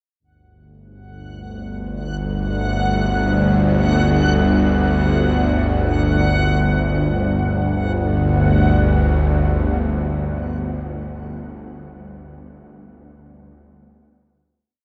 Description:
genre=dark ambient drone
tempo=free time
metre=none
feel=none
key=unclear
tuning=A4 = 442 Hz
part: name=bowed-like drone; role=drone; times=1.5-10.5 s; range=G1 to D2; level=-20 LUFS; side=equal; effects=built-in reverb
part: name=backwards swelling texture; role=texture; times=2.1-7.5 s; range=F#5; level=-29 LUFS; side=equal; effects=built-in reverb
room=wet huge ambient reverb, RT60 8.0 s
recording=dark, warm production, nothing above 7.6 kHz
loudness=-18 LUFS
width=mono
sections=0.2-7.5 A section; 7.5-11.1 final chord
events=fade-in on synth texture 0.2-7.5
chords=0.2 G5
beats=free time

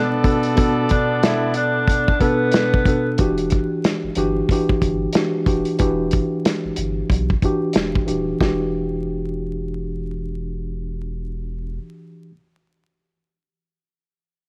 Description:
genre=hip hop, boom-bap hip-hop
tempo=92 BPM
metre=4/4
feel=swing 60% on 16ths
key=E minor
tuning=A4 = 442 Hz
part: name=breathy tenor saxophone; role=melody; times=0.0-3.1 s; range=B3 to E4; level=-25 LUFS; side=equal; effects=high-pass filter, low-pass filter, tape echo
part: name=mellow tine electric piano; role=accompaniment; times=0.0-12.3 s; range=B2 to A4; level=-24 LUFS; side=equal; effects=high-pass filter, low-pass filter
part: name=clear trumpet section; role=stabs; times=0.0-2.8 s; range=B3 to D5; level=-28 LUFS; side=equal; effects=high-pass filter, low-pass filter, tape echo
part: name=warm soul drum kit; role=drums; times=0.2-8.6 s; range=hi-hat, kick drum, snare drum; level=-22 LUFS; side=equal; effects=cassette tape
part: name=warm sub bass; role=bass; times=3.2-11.8 s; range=D#1 to B1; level=-31 LUFS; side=equal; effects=none
room=little or no reverb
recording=home recording on cassette, vinyl crackle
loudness=-20 LUFS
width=mono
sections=0.0-3.2 A section; 3.2-8.4 B section; 8.4-11.0 C section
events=break 0.0-3.2; filter sweep on tine electric piano 3.2-8.4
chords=0.0 Bm7; 3.2 Em9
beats=| 0.58 1.23 1.88 2.54 | 3.19 3.84 4.49 5.14 | 5.80 6.45 7.10 7.75 | 8.41 9.06 9.71 10.36

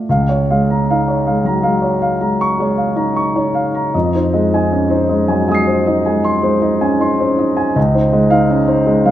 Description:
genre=classical, impressionist solo piano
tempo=78 BPM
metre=5/4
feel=rubato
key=Db major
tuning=A4 = 443 Hz
part: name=warm concert grand piano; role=solo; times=0.0-9.1 s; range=Db2 to C7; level=-12 LUFS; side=equal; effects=none
room=moderate concert hall reverb, RT60 1.9 s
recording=none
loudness=-13 LUFS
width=side -12 dB against mid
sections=0.1-9.1 A section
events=none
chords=0.1 Db6; 3.9 Fm7; 7.8 Dbmaj9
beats=| 0.07 0.86 1.62 2.39 3.17 | 3.94 4.70 5.45 6.23 7.00 | 7.76 8.51

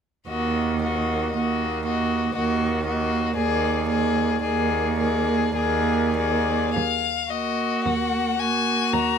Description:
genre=classical, slow romantic movement for string quartet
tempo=46-60 BPM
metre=3/4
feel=rubato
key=Eb minor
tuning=A4 = 444 Hz
part: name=rich violin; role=melody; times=0.3-9.2 s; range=D5 to Bb5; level=-28 LUFS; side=left 10 dB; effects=none
part: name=rich violin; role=second line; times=0.3-9.2 s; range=Gb4 to Ab4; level=-26 LUFS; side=left 5 dB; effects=none
part: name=warm viola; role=accompaniment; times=0.3-9.2 s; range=Bb3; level=-26 LUFS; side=right 4 dB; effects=none
part: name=clear cello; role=bass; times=0.3-9.2 s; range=Eb2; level=-27 LUFS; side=right 5 dB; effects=none
room=light reverb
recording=none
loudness=-21 LUFS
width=side -7 dB against mid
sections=0.3-6.8 A section; 6.8-9.2 B section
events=none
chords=0.3 Ebm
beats=| 0.29 1.35 2.36 | 3.36 4.42 5.54 | 6.76 7.86 8.94

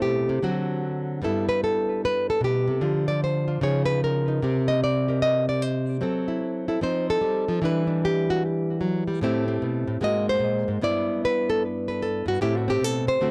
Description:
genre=solo jazz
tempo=150 BPM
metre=4/4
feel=swing 65% on 8ths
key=G major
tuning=A4 = 440 Hz
part: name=nylon-string guitar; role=solo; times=0.0-13.3 s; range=G2 to Eb5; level=-24 LUFS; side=equal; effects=analog delay
room=light reverb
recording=dry, gritty hardware recording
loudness=-25 LUFS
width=mono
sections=0.0-1.2 A section; 1.2-13.3 B section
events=nylon-string guitar solo 1.2-13.3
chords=0.4 D7; 1.2 G69; 2.8 Dm7; 3.6 C#add9; 4.4 Csus2; 6.0 F#m7b5; 6.8 F9; 7.6 Em9; 9.2 Am7; 10.0 Ab9; 10.8 G6; 12.4 Am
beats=0.00 0.40 0.80 | 1.20 1.60 2.00 2.40 | 2.81 3.21 3.61 4.01 | 4.41 4.81 5.21 5.61 | 6.01 6.41 6.81 7.21 | 7.61 8.01 8.41 8.81 | 9.21 9.61 10.01 10.41 | 10.81 11.21 11.61 12.01 | 12.41 12.81 13.21

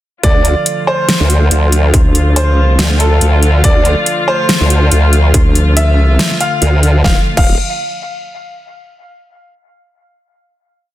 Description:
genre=heavy wobble dubstep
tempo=141 BPM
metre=4/4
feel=swing 55% on 16ths, half-time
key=D minor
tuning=A4 = 440 Hz
part: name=warm grand piano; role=melody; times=0.2-7.5 s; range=A4 to F5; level=-18 LUFS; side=equal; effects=dub echo
part: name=dark studio string section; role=sustained chords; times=0.2-7.2 s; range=D3 to F4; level=-19 LUFS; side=equal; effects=sidechain pumping, low-pass filter
part: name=formant-sweep wobble bass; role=bass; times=0.2-7.6 s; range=D1 to D2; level=-10 LUFS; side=equal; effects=chorus, overdrive
part: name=dubstep drum kit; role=drums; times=0.2-7.5 s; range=crash cymbal, hi-hat, snare drum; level=-16 LUFS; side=equal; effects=small room ambience
part: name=electronic kick drum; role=drums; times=0.2-7.5 s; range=none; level=-12 LUFS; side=equal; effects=distortion, small room ambience
part: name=vowel-sweep wobble bass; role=bass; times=1.9-2.8, 5.3-6.2 s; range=D2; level=-10 LUFS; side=equal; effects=chorus, overdrive
room=little or no reverb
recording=dense, heavily limited modern master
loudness=-9 LUFS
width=side -14 dB against mid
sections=0.2-7.0 drop; 7.0-8.7 final chord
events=drop 0.2-7.0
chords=0.2 Dm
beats=| 0.23 0.66 1.09 1.51 | 1.94 2.36 2.79 3.21 | 3.64 4.07 4.49 4.92 | 5.34 5.77 6.19 6.62 | 7.04 7.47

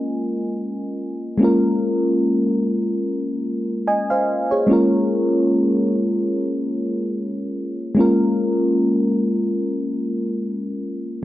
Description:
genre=reggae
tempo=free time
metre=none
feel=none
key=Db major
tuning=A4 = 436 Hz
part: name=mellow FM electric piano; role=solo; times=0.0-11.2 s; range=Ab3 to Ab5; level=-18 LUFS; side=equal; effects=chorus
room=moderate booth ambience, RT60 0.2 s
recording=dry, close 1970s-style studio recording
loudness=-18 LUFS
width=side -14 dB against mid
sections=0.0-11.2 A section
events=none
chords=0.0 Db6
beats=free time

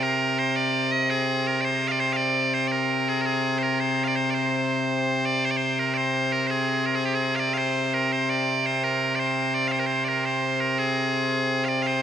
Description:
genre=medieval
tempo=112 BPM (dotted quarters)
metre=6/8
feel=straight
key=unclear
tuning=A4 = 444 Hz
part: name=loud bright bagpipes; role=solo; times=0.0-12.0 s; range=C3 to F5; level=-22 LUFS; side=equal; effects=none
room=wet cathedral reverb, RT60 5.6 s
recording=recorded in a church or concert hall, nothing above 10.8 kHz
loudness=-22 LUFS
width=side -9 dB against mid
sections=0.0-5.4 A section; 5.4-12.0 B section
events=none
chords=none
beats=| 0.05 0.59 | 1.13 1.67 | 2.21 2.74 | 3.28 3.82 | 4.36 4.90 | 5.43 5.97 | 6.51 7.04 | 7.58 8.12 | 8.65 9.19 | 9.72 10.26 | 10.79 11.32 | 11.86

